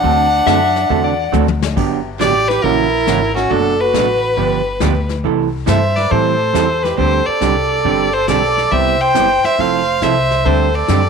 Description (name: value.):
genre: country, western swing.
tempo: 138 BPM.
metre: 4/4.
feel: swing 67% on 8ths.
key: G major.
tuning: A4 = 438 Hz.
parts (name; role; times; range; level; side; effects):
clear fiddle; melody; 0.0-11.1 s; F#4 to G5; -16 LUFS; left 3 dB; none.
mellow trumpet; second line; 0.0-11.1 s; C#4 to C5; -20 LUFS; right 9 dB; none.
vintage hollow-body jazz guitar; accompaniment; 0.0-11.0 s; B2 to A4; -19 LUFS; right 11 dB; none.
upright bass; bass; 0.0-11.1 s; F1 to A2; -20 LUFS; left 2 dB; none.
vintage brush drum kit; drums; 0.0-11.1 s; brushed snare drum, crash cymbal, hi-hat, kick drum, snare drum, toms; -25 LUFS; left 10 dB; none.
clean lap steel guitar; second line; 0.5-1.5 s; D5 to E5; -21 LUFS; left 16 dB; none.
room: moderate spring reverb, RT60 1.3 s, small room ambience.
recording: 1960s-style stereo with parts hard left and right.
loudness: -12 LUFS.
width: side -5 dB against mid.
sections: 0.0-1.8 A section; 1.8-11.1 B section.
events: drum fill 1.3-1.8.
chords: 0.0 D9; 1.8 Gmaj7; 2.6 F#7; 3.5 Bm7/F#; 4.4 G7; 5.2 C6; 6.1 Am7; 7.0 D7sus4; 8.7 Cmaj7; 9.6 Fmaj7; 10.5 D7sus4.